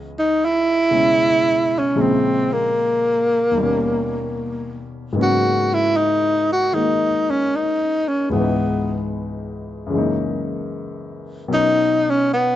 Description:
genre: jazz.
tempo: 76 BPM.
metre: 4/4.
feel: swing 69% on 8ths.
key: unclear.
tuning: A4 = 442 Hz.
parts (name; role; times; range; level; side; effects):
warm baby grand piano; accompaniment; 0.0-12.6 s; C#2 to D#5; -23 LUFS; left 2 dB; none.
breathy tenor saxophone; melody; 0.2-12.6 s; A#3 to F#4; -17 LUFS; equal; none.
room: moderate plate reverb, RT60 2.4 s.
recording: dark, warm production, nothing above 7.9 kHz.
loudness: -16 LUFS.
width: side -12 dB against mid.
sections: 0.0-12.6 A section.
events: none.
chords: 0.0 C#m9; 2.0 A#m9; 3.6 D#7b13; 5.2 G#m11; 8.3 C#m7; 9.9 F#13; 11.5 Bmaj7.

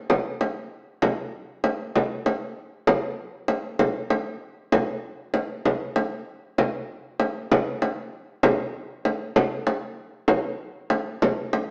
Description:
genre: persian.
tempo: free time.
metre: none.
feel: none.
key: none.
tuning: none.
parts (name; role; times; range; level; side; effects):
frame drum; percussion; 0.1-11.7 s; none; -25 LUFS; equal; none.
room: wet stone room reverb, RT60 1.3 s.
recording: band playing live in one room, small speaker sound.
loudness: -26 LUFS.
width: mono.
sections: 0.0-6.6 A section; 6.6-11.7 A section.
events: none.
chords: none.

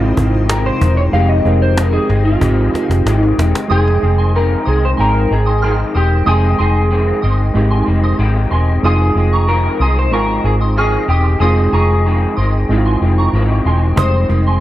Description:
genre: indie pop, bedroom pop.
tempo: 93 BPM.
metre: 4/4.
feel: straight.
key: F minor.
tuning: A4 = 442 Hz.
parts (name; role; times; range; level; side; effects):
electric guitar through a small old amp; accompaniment; 0.0-14.6 s; F2 to C4; -22 LUFS; left 4 dB; ensemble chorus, vibrato effect.
reed electric piano; accompaniment; 0.0-14.6 s; G3 to G5; -21 LUFS; right 3 dB; cassette tape, tape echo.
shimmering ambient pad; sustained chords; 0.0-3.7, 14.0-14.6 s; C3 to Eb4; -28 LUFS; equal; chorus, built-in reverb.
vintage muted fingered electric bass; bass; 0.0-14.6 s; E1 to C2; -14 LUFS; equal; none.
cajon; drums; 0.2-3.7, 14.0-14.4 s; none; -21 LUFS; equal; tape echo.
electric guitar through a small old amp; melody; 0.5-14.6 s; F4 to F5; -18 LUFS; equal; analog chorus, tape echo.
soft synth bell; second line; 3.7-14.6 s; Ab5 to F6; -23 LUFS; right 3 dB; ensemble chorus, tape echo.
room: digital ambience.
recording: echo-heavy mix, cassette tape.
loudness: -12 LUFS.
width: side -14 dB against mid.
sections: 0.0-3.7 A section; 3.7-14.6 B section.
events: clean electric guitar solo 0.0-3.7; drum fill 2.4-3.7.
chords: 0.0 Bb9sus4 (rootless); 1.1 Fm7.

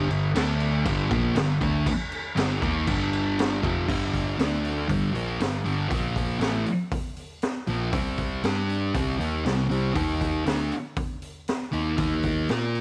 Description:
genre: garage rock duo or trio.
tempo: 118 BPM.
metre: 4/4.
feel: straight.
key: G minor.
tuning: A4 = 442 Hz.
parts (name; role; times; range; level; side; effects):
thick fuzz guitar; riff; 0.0-12.8 s; F2 to Bb4; -28 LUFS; equal; distortion.
hollow-body short-scale picked electric bass; bass; 0.0-12.8 s; F1 to Bb2; -34 LUFS; equal; none.
raw garage drum kit; drums; 0.1-12.8 s; crash cymbal, hi-hat, kick drum, snare drum; -32 LUFS; equal; none.
room: light reverb, small room ambience.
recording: none.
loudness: -26 LUFS.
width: mono.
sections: 0.0-3.9 A section; 3.9-12.8 B section.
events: none.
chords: 0.3 D5; 0.9 Gm; 3.9 G5; 4.4 D5; 4.9 Gm; 5.9 Bb5; 6.4 Fadd11/A; 7.9 C5; 8.4 G5; 8.9 C5; 10.0 Eb5; 10.5 Bbadd11/D; 12.0 Eb5.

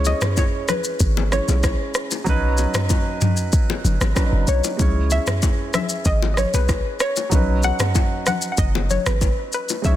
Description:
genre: afrobeats.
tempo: 95 BPM.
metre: 4/4.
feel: straight.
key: B major.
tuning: A4 = 440 Hz.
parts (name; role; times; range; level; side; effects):
soft round pluck; melody; 0.0-10.0 s; B4 to F#5; -25 LUFS; left 2 dB; chorus, ping-pong delay.
warm grand piano; accompaniment; 0.0-10.0 s; F#3 to C#5; -28 LUFS; right 4 dB; none.
warm 808-style bass; bass; 0.0-10.0 s; F#1 to C#2; -20 LUFS; equal; none.
afro-pop drum kit; drums; 0.0-10.0 s; kick drum, rim click, shaker, toms; -21 LUFS; equal; soft clipping on snare.
bongos and congas; percussion; 0.1-10.0 s; none; -28 LUFS; left 8 dB; none.
room: light reverb.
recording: dense, heavily limited modern master.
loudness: -18 LUFS.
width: side -13 dB against mid.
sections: 0.0-10.0 A section.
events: none.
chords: 0.0 C#m; 2.3 Badd9; 4.8 C#m; 7.3 Badd9.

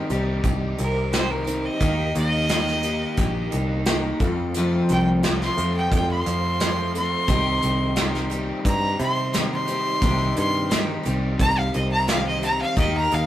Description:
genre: folk rock and heartland rock.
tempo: 88 BPM.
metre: 4/4.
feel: straight.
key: C dorian.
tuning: A4 = 440 Hz.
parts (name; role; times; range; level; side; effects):
picked twelve-string acoustic guitar; accompaniment; 0.0-13.3 s; F2 to A4; -28 LUFS; left 2 dB; none.
mellow tonewheel organ; sustained chords; 0.0-13.3 s; G4 to D6; -40 LUFS; right 2 dB; none.
overdriven electric guitar; riff; 0.0-13.3 s; F2 to G4; -30 LUFS; right 1 dB; none.
picked electric bass; bass; 0.1-13.3 s; Bb1 to C3; -26 LUFS; equal; none.
soft brush drum kit; drums; 0.1-13.3 s; hi-hat, kick drum, snare drum; -25 LUFS; equal; none.
clear fiddle; melody; 0.8-13.3 s; Bb4 to C6; -25 LUFS; equal; none.
room: moderate studio reverb, RT60 0.7 s.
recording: rough rehearsal-room recording, tube saturation.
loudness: -20 LUFS.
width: side -12 dB against mid.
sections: 0.0-13.3 A section.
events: fiddle solo 0.0-13.3.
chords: 0.0 Cm; 1.8 Eb; 4.2 F; 7.3 Cm.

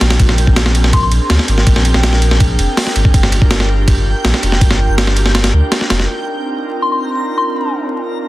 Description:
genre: drum and bass, jungle.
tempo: 163 BPM.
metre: 4/4.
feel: straight.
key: C minor.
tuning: A4 = 439 Hz.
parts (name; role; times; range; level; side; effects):
airy breathy pad; sustained chords; 0.0-8.3 s; C4 to Bb4; -22 LUFS; equal; chorus, vintage 12-bit sampler grit.
saturated sub bass; bass; 0.0-6.1 s; F1 to D2; -13 LUFS; equal; none.
breakbeat sampler-style drum kit; drums; 0.0-6.1 s; hi-hat, kick drum, ride cymbal, snare drum; -13 LUFS; equal; none.
backwards swelling texture; texture; 0.0-8.3 s; G5 to Bb5; -26 LUFS; right 2 dB; built-in reverb.
soft synth bell; melody; 0.9-1.1, 6.8-7.7 s; C6; -19 LUFS; left 2 dB; chorus, phaser, vintage 12-bit sampler grit, dub echo.
room: light reverb.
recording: dense, heavily limited modern master, vinyl crackle.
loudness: -11 LUFS.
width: side -17 dB against mid.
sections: 0.0-6.1 A section; 6.1-8.3 B section.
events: none.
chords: 0.2 Bb9; 3.1 Gm7; 6.1 Cm11.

